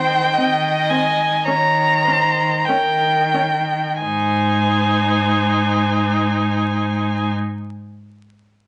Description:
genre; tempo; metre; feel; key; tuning
classical, slow romantic movement for string quartet; 42-57 BPM; 4/4; rubato; Ab major; A4 = 439 Hz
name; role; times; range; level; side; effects
rich violin; melody; 0.0-7.3 s; Bb4 to Eb5; -28 LUFS; equal; none
rich violin; second line; 0.0-7.3 s; G5 to Bb5; -21 LUFS; equal; none
clear cello; bass; 0.0-7.3 s; Ab2 to Eb3; -24 LUFS; equal; none
rich viola; accompaniment; 0.4-7.3 s; C4 to Eb4; -26 LUFS; equal; none
room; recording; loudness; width
moderate large studio reverb, RT60 0.9 s; vinyl crackle, nothing above 10.8 kHz; -18 LUFS; mono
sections
0.0-4.0 A section; 4.0-8.7 B section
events
slowing down 0.0-4.0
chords
0.0 Eb6; 1.5 Eb7; 4.0 Ab

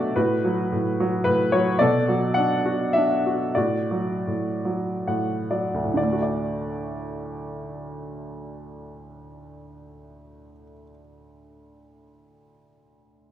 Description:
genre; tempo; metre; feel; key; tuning
classical, lyrical solo piano; 60-111 BPM; 3/4; rubato; D major; A4 = 440 Hz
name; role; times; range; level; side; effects
bright baby grand piano; solo; 0.0-13.3 s; D2 to F#5; -22 LUFS; equal; none
room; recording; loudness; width
moderate recital hall reverb, RT60 1.3 s; none; -21 LUFS; side -11 dB against mid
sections
0.0-6.0 A section; 6.0-11.6 B section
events
slowing down 1.8-6.0; grand piano fill 4.6-6.0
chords
0.2 A69; 1.8 Bm7; 3.6 D/A

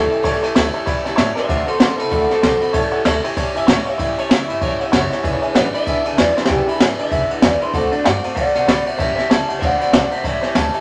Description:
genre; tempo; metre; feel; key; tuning
rockabilly; 192 BPM; 4/4; swing 60% on 8ths; A mixolydian; A4 = 439 Hz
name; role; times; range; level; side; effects
electric guitar through a small old amp; melody; 0.0-10.7 s; D4 to A5; -22 LUFS; equal; none
picked acoustic archtop guitar; accompaniment; 0.0-10.8 s; E2 to F#4; -28 LUFS; equal; none
warm upright piano; accompaniment; 0.0-10.8 s; B4 to C6; -27 LUFS; equal; none
upright bass; bass; 0.0-10.8 s; E1 to D3; -31 LUFS; equal; none
jazz brush drum kit; drums; 0.1-10.8 s; kick drum, ride cymbal, snare drum; -20 LUFS; equal; none
room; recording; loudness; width
wet studio reverb, RT60 0.6 s; none; -17 LUFS; mono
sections
0.0-10.8 A section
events
drum fill 6.3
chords
0.0 A7; 1.5 D7; 2.7 A7; 5.2 E7; 7.7 D7; 9.0 A7; 9.6 D7; 10.2 A7

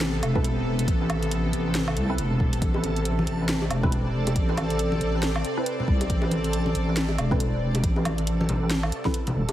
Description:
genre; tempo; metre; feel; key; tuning
deep dubstep; 138 BPM; 4/4; swing 59% on 16ths, half-time; A minor; A4 = 440 Hz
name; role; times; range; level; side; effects
bowed-like drone; sustained chords; 0.0-9.5 s; C3 to D5; -31 LUFS; left 1 dB; built-in reverb, vintage 12-bit sampler grit
wobble bass; bass; 0.0-9.5 s; E1 to C2; -25 LUFS; equal; chorus, tube saturation
garage drum kit; drums; 0.0-9.5 s; hi-hat, snare drum, woodblock; -30 LUFS; right 1 dB; overdrive
backwards swelling texture; texture; 0.0-9.5 s; A4; -35 LUFS; right 2 dB; built-in reverb
filtered dub chord stab; stabs; 0.4-9.2 s; C4 to B4; -35 LUFS; right 1 dB; phaser, analog chorus, dub echo
electronic kick drum; drums; 0.4-9.1 s; none; -26 LUFS; equal; overdrive
bongos and congas; percussion; 2.7-9.5 s; none; -32 LUFS; left 1 dB; none
room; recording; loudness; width
light reverb; heavily compressed radio sound, multiband compression; -22 LUFS; side -13 dB against mid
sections
0.0-9.5 A section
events
kick drops out 9.1-9.5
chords
0.0 Amadd9

